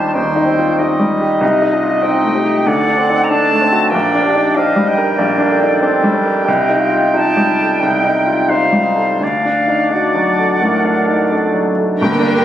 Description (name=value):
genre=classical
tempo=81-97 BPM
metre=4/4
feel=rubato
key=unclear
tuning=A4 = 440 Hz
part: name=clear baby grand piano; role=melody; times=0.0-12.4 s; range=Bb1 to Bb4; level=-15 LUFS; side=left 1 dB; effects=none
part: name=clear oboe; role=second line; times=0.0-11.7 s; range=C5 to G5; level=-19 LUFS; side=right 2 dB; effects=none
part: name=dark clarinet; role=second line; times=0.0-12.4 s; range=D4 to C5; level=-22 LUFS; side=right 1 dB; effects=none
part: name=silver concert flute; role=second line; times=0.0-11.7 s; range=D5 to Bb5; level=-19 LUFS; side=left 1 dB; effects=none
part: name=warm bassoon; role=accompaniment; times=0.0-11.6 s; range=G3 to G4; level=-21 LUFS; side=right 2 dB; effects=none
part: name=rich symphonic violin section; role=melody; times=12.0-12.4 s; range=G5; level=-22 LUFS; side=left 2 dB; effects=none
part: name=warm symphonic violin section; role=second line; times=12.0-12.4 s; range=Bb4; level=-19 LUFS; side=right 3 dB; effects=none
part: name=dark symphonic viola section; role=accompaniment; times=12.0-12.4 s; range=Bb3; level=-17 LUFS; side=right 1 dB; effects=none
part: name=rich studio cello section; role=bass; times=12.0-12.4 s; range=D3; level=-22 LUFS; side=right 3 dB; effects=none
part: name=rich symphonic double bass section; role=bass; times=12.0-12.4 s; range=G1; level=-31 LUFS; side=right 7 dB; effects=none
part: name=timpani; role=percussion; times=12.0-12.4 s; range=G2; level=-26 LUFS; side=equal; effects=none
room=moderate recital hall reverb, RT60 1.3 s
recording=recorded on a phone in the room, club reverb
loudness=-12 LUFS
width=side -11 dB against mid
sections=0.0-12.0 A section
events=none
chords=0.0 Cm/Eb; 2.7 D; 3.9 Gm/Bb; 6.5 Am7b5/C; 9.2 D